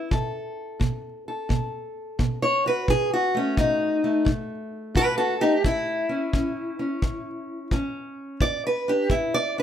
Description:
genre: acoustic country blues, solo or duo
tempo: 87 BPM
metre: 4/4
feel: swing 66% on 8ths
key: unclear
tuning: A4 = 438 Hz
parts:
  - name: fingerpicked steel-string acoustic guitar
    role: melody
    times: 0.0-9.6 s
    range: E2 to D5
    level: -23 LUFS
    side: equal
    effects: plate reverb
  - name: kick drum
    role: drums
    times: 0.1-9.3 s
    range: none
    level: -26 LUFS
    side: left 1 dB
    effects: none
room: light reverb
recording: none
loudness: -22 LUFS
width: side -9 dB against mid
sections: 0.0-9.6 A section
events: steel-string acoustic guitar solo 0.0-9.6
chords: 0.1 B7(no3); 5.6 A; 8.4 E5

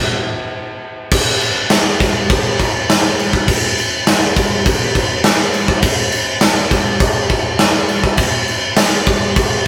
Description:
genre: rock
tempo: 102 BPM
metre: 4/4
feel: straight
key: none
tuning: none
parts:
  - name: big rock drum kit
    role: drums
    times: 1.1-9.5 s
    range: crash cymbal, kick drum, snare drum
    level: -15 LUFS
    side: equal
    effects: none
room: light reverb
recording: rough rehearsal-room recording, warm saturation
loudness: -15 LUFS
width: mono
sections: 0.0-1.1 A section; 1.1-9.7 B section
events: stop 0.0-1.1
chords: none

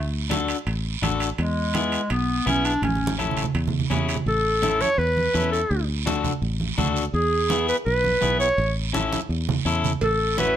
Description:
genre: latin, cumbia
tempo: 167 BPM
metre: 4/4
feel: straight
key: A major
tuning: A4 = 439 Hz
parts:
  - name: clear clarinet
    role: melody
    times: 0.0-10.6 s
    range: G#3 to C#5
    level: -22 LUFS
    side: right 1 dB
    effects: none
  - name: fingered electric bass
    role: bass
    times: 0.0-10.6 s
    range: A1 to E2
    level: -26 LUFS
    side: equal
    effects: none
  - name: electric guitar at the edge of break-up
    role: accompaniment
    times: 0.3-10.6 s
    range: B3 to A4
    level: -26 LUFS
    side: left 5 dB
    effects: none
  - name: congas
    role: percussion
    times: 0.3-10.6 s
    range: none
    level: -28 LUFS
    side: right 4 dB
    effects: none
  - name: guiro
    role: percussion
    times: 0.3-10.6 s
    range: none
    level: -34 LUFS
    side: right 8 dB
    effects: none
  - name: timbales and cowbell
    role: percussion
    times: 0.3-4.3, 10.0-10.2 s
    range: none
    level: -32 LUFS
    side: right 6 dB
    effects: none
room: light reverb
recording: none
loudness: -20 LUFS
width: side -10 dB against mid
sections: 0.0-4.3 A section; 4.3-10.6 A section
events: drum fill 2.8-4.3, 9.1-10.0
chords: 0.0 D; 1.4 E; 2.8 A; 5.7 D; 7.1 E; 8.6 A

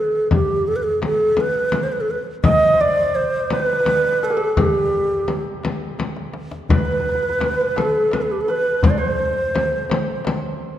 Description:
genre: Persian modal ensemble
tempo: 56 BPM (dotted quarters)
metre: 6/8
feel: straight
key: G dastgah homayun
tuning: A4 = 445 Hz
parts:
  - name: breathy low ney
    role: melody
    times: 0.0-10.3 s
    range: G4 to Eb5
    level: -18 LUFS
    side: right 1 dB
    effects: none
  - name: frame drum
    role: percussion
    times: 0.3-10.4 s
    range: none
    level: -23 LUFS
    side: left 2 dB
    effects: none
  - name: tombak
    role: percussion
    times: 0.3-10.4 s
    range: none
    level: -25 LUFS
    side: left 2 dB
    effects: none
  - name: santur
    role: second line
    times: 2.4-10.8 s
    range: G4 to Eb5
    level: -27 LUFS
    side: right 2 dB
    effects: none
room: wet concert hall reverb, RT60 2.2 s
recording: dark, warm production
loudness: -17 LUFS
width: side -11 dB against mid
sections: 0.0-6.7 A section; 6.7-10.8 B section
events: drum fill 6.0-6.7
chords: none

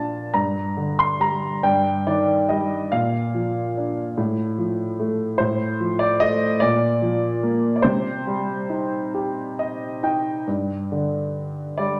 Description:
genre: classical, lyrical solo piano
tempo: 45-50 BPM (dotted quarters)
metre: 6/8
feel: rubato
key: unclear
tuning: A4 = 441 Hz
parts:
  - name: warm baby grand piano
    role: solo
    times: 0.0-12.0 s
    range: G2 to C6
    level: -23 LUFS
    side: equal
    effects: none
room: wet recital hall reverb, RT60 1.4 s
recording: none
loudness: -23 LUFS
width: mono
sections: 0.0-10.5 A section; 10.5-12.0 B section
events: grand piano fill 9.1-10.5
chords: 0.3 Gm; 1.6 Eb/G; 2.9 Bb; 4.2 F/A; 6.6 Bb; 7.8 Cm; 10.5 G5

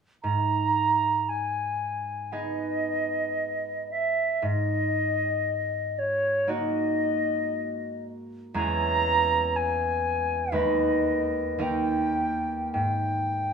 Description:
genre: classical, romantic duo for flute and harp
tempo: 58 BPM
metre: 4/4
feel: uneven beats, rubato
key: G# minor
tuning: A4 = 440 Hz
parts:
  - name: silver concert flute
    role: melody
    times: 0.2-13.5 s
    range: C#5 to A#5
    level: -26 LUFS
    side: equal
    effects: none
  - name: concert harp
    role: accompaniment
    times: 0.2-13.5 s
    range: D#2 to B4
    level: -28 LUFS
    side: right 2 dB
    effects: none
room: light reverb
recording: small room ambience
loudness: -24 LUFS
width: side -6 dB against mid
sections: 0.2-13.5 A section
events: none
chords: 0.2 G#m; 4.4 D#m/G#; 8.5 C#m/E; 10.5 G#m/D#; 11.6 D#; 12.7 G#5

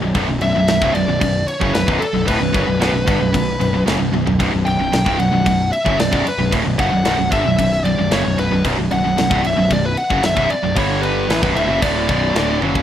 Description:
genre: heavy metal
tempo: 113 BPM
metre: 4/4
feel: straight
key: B minor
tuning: A4 = 440 Hz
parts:
  - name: biting overdriven guitar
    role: riff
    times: 0.0-12.8 s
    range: B1 to G3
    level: -26 LUFS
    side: right 1 dB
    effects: none
  - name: heavy high-gain guitar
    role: riff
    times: 0.0-12.8 s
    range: B1 to G3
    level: -23 LUFS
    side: left 9 dB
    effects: distortion
  - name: high-gain distorted guitar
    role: riff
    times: 0.0-12.8 s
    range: B1 to G3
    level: -21 LUFS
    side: right 7 dB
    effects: distortion
  - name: fuzz picked electric bass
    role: bass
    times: 0.0-12.8 s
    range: B0 to A1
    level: -22 LUFS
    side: equal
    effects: overdrive
  - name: tight metal drum kit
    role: drums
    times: 0.1-12.8 s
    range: crash cymbal, kick drum, snare drum, toms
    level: -23 LUFS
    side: equal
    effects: none
  - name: high-gain lead guitar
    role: melody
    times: 0.4-12.6 s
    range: A4 to G5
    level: -20 LUFS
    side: left 1 dB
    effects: distortion
room: studio reverb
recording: rough home demo mix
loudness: -14 LUFS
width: side -10 dB against mid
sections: 0.0-12.8 A section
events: drum fill 4.1, 12.6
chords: 0.0 Bm; 10.8 G5; 11.3 Bm

